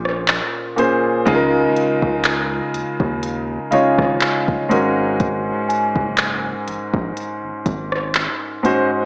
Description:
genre	contemporary R&B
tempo	61 BPM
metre	4/4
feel	swing 54% on 16ths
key	unclear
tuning	A4 = 441 Hz
part	warm grand piano	accompaniment	0.0-9.1 s	Ab2 to Db5	-18 LUFS	equal	none
part	rubbery square bass	bass	0.0-8.3 s	Gb1 to Eb2	-27 LUFS	equal	none
part	celesta	texture	0.0-7.4 s	F5 to Ab5	-24 LUFS	equal	digital delay
part	smooth R&B drum kit	drums	0.1-8.9 s	handclaps, hi-hat, kick drum, rim click	-20 LUFS	equal	none
room	light reverb, digital ambience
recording	worn, warbling old tape, cassette tape, warbly pitch drift, small speaker sound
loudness	-16 LUFS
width	side -39 dB against mid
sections	0.0-9.1 A section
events	none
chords	0.0 Bbm9; 1.3 Db69; 4.7 Ab7sus4

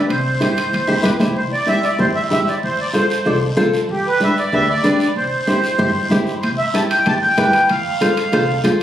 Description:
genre	latin, cumbia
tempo	190 BPM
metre	4/4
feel	straight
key	C major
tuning	A4 = 440 Hz
part	flamenco guitar	accompaniment	0.0-8.8 s	D4 to D5	-19 LUFS	left 1 dB	none
part	upright bass	bass	0.0-8.8 s	C2 to G2	-23 LUFS	equal	none
part	accordion	melody	0.1-8.6 s	G4 to A5	-18 LUFS	right 1 dB	light tremolo tuning, plate reverb
part	congas	percussion	0.1-8.8 s	none	-24 LUFS	equal	none
part	guiro	percussion	0.1-8.8 s	none	-32 LUFS	left 3 dB	none
part	timbales	percussion	0.1-1.4, 6.4-8.8 s	none	-28 LUFS	right 4 dB	none
room	wet large studio reverb, RT60 0.8 s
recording	recorded on a phone in the room, club reverb, compression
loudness	-14 LUFS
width	side -11 dB against mid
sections	0.0-1.4 A section; 1.4-8.8 B section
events	none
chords	0.1 C; 2.6 F; 3.9 G; 5.2 C; 7.7 F

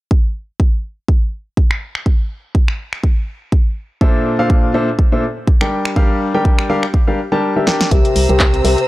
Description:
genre	piano house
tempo	123 BPM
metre	4/4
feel	swing 56% on 16ths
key	unclear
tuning	A4 = 438 Hz
part	electronic kick drum	drums	0.1-8.5 s	none	-13 LUFS	equal	none
part	house drum kit	drums	1.7-8.9 s	finger snaps, handclaps, hi-hat, snare drum	-20 LUFS	equal	low-pass filter on snare, low-pass filter on hats
part	clear baby grand piano	riff	4.0-8.8 s	Bb2 to A5	-16 LUFS	left 1 dB	sidechain pumping, low-pass filter, tape echo
part	warm symphonic violin section	sustained chords	7.9-8.9 s	C5 to E6	-22 LUFS	right 2 dB	sidechain pumping
part	organ-like FM bass	bass	7.9-8.8 s	C2	-16 LUFS	equal	sidechain pumping
part	granular cloud pad	texture	8.5-8.9 s	C4 to D5	-28 LUFS	right 3 dB	none
room	little or no reverb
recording	dry, gritty hardware recording, transformer saturation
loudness	-13 LUFS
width	side -18 dB against mid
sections	0.1-7.9 A section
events	filter sweep on drum 0.1-7.9; drum fill 7.7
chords	0.1 N.C.; 4.0 Bbmaj9#11; 5.7 Gm7; 7.9 C7

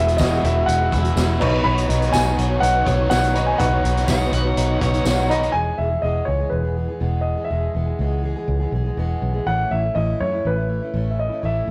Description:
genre	folk rock and heartland rock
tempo	123 BPM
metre	4/4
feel	straight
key	E major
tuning	A4 = 441 Hz
part	warm concert grand piano	melody	0.0-11.7 s	B4 to B5	-25 LUFS	equal	none
part	bright upright piano	accompaniment	0.0-5.5 s	D#4 to D#5	-30 LUFS	equal	none
part	picked plugged-in steel-string acoustic guitar	accompaniment	0.0-11.7 s	E2 to C#5	-29 LUFS	equal	none
part	mellow tonewheel organ	sustained chords	0.0-5.5 s	G#3 to E5	-32 LUFS	equal	slow rotary speaker, chorus vibrato
part	overdriven electric guitar	riff	0.0-5.5 s	E2 to C#5	-29 LUFS	equal	none
part	fingered electric bass	bass	0.0-11.7 s	E1 to F#2	-24 LUFS	equal	none
part	vintage drum kit	drums	0.1-5.5 s	crash cymbal, hi-hat, kick drum, snare drum	-28 LUFS	equal	none
part	tambourine	percussion	0.2-5.2 s	none	-40 LUFS	equal	none
part	overdriven slide guitar	second line	4.1-5.4 s	F#5	-31 LUFS	equal	none
room	moderate stone room reverb, RT60 1.6 s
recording	rough rehearsal-room recording, warm saturation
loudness	-20 LUFS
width	mono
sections	0.0-5.5 A section; 5.5-11.7 B section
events	none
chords	0.0 Eadd9; 1.4 Badd9; 5.5 E; 9.5 A

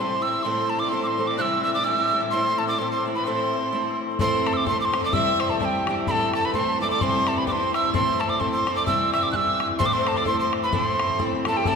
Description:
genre	celtic folk, Celtic polka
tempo	128 BPM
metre	2/4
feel	swing 57% on 8ths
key	A minor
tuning	A4 = 443 Hz
part	mellow hollow tin whistle	melody	0.0-11.8 s	G5 to F#6	-23 LUFS	right 2 dB	none
part	clear fiddle	second line	0.0-11.8 s	G4 to E5	-30 LUFS	left 7 dB	none
part	fingerpicked twelve-string acoustic guitar	accompaniment	0.0-11.8 s	A2 to E4	-27 LUFS	right 1 dB	none
part	rich cello	drone	0.0-4.3 s	A2	-37 LUFS	left 2 dB	none
part	bodhran	percussion	4.2-11.8 s	none	-30 LUFS	left 4 dB	none
part	cimbalom	second line	11.5-11.8 s	G4 to A4	-36 LUFS	left 2 dB	none
room	wet cathedral reverb, RT60 4.6 s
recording	recorded in a church or concert hall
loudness	-20 LUFS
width	side -6 dB against mid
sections	0.0-4.2 A section; 4.2-11.7 A section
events	none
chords	0.5 Am; 1.4 C; 2.3 Am; 5.1 C; 6.1 Am; 7.0 C; 7.9 Am; 8.9 C; 9.8 Am

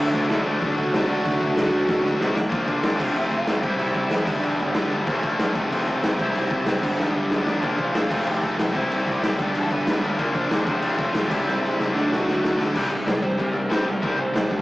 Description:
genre	punk rock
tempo	188 BPM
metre	4/4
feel	straight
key	unclear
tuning	A4 = 439 Hz
part	lead guitar through a small cranked amp	melody	0.0-14.5 s	G3 to B5	-28 LUFS	right 1 dB	overdrive
part	raw garage guitar	riff	0.0-14.6 s	F2 to D4	-31 LUFS	right 2 dB	none
part	thick fuzz guitar	riff	0.0-14.6 s	F2 to D4	-33 LUFS	equal	none
part	tight distorted guitar	riff	0.0-14.6 s	F2 to F4	-26 LUFS	left 2 dB	distortion
part	fuzz picked electric bass	bass	0.0-14.6 s	E1 to C3	-29 LUFS	equal	overdrive
part	raw garage drum kit	drums	0.1-14.6 s	crash cymbal, hi-hat, kick drum, snare drum	-24 LUFS	equal	none
room	moderate studio reverb, RT60 0.6 s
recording	rough rehearsal-room recording, warm saturation, small speaker sound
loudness	-20 LUFS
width	side -18 dB against mid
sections	0.0-2.5 A section; 2.5-12.7 B section; 12.7-14.6 C section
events	drum fill 1.9-2.5, 7.0-7.6, 11.5-12.7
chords	0.0 D; 2.5 Bb; 3.0 F; 3.6 C; 4.3 G; 5.1 Bb; 5.5 F; 6.2 C; 6.8 G; 7.6 Bb; 8.1 F; 8.7 C; 9.4 G; 10.2 Bb; 10.7 F; 11.3 C; 11.9 D; 12.7 C5

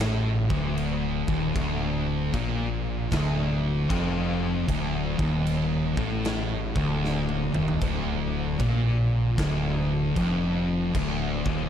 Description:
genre	stoner and doom metal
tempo	77 BPM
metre	4/4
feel	swing 65% on 8ths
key	D phrygian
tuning	A4 = 439 Hz
part	thick fuzz guitar	riff	0.0-11.7 s	D2 to Bb2	-27 LUFS	left 6 dB	distortion
part	thick fuzz guitar	riff	0.0-11.7 s	D2 to Bb2	-29 LUFS	right 8 dB	distortion
part	growling fingered electric bass	bass	0.0-11.7 s	D1 to Bb1	-31 LUFS	equal	overdrive
part	big rock drum kit	drums	0.0-11.6 s	crash cymbal, kick drum, snare drum, toms	-32 LUFS	equal	none
room	little or no reverb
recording	dark, warm production, lossy compression artefacts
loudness	-23 LUFS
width	side -9 dB against mid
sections	0.0-11.7 A section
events	drum fill 7.0-7.8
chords	0.0 Dm

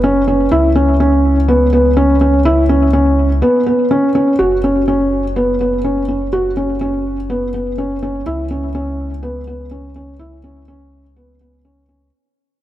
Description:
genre	piano and strings electronica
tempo	124 BPM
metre	4/4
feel	straight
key	unclear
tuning	A4 = 439 Hz
part	felt-muted upright piano	riff	0.0-12.1 s	B3 to F#4	-13 LUFS	equal	ping-pong delay
part	warm sub bass	bass	0.0-12.1 s	F#1 to C#2	-18 LUFS	equal	none
room	moderate huge ambient reverb, RT60 3.9 s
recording	none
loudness	-12 LUFS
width	side -13 dB against mid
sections	0.0-4.4 A section; 4.4-12.1 B section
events	drop 0.0-4.4; fade-out 4.4-12.1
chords	0.0 F#5; 0.5 C#7(no3); 4.4 F#5; 8.3 C#7(no3)

